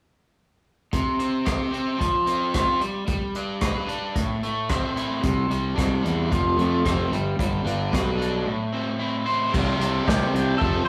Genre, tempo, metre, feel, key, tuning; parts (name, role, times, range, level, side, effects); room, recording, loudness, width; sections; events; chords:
indie rock; 112 BPM; 4/4; straight; C major; A4 = 442 Hz
crunchy overdriven guitar; riff; 0.9-10.9 s; F2 to C5; -27 LUFS; equal
unplugged drum kit; drums; 0.9-10.7 s; crash cymbal, hi-hat, kick drum, rim click, snare drum; -29 LUFS; equal
fuzz fingered electric bass; bass; 5.2-10.8 s; F1 to F2; -26 LUFS; equal; overdrive
overdriven electric guitar; riff; 9.5-10.9 s; C3 to G4; -35 LUFS; equal
clean electric guitar; melody; 10.1-10.9 s; G4 to C5; -29 LUFS; equal
light reverb; rough rehearsal-room recording, warm saturation, small room reverb; -24 LUFS; mono
0.9-9.5 A section; 9.5-10.9 B section
0.9 C5; 2.0 F5; 2.8 G; 4.2 Am; 5.2 Csus2; 6.3 F; 7.1 G; 8.5 Am; 9.5 Csus2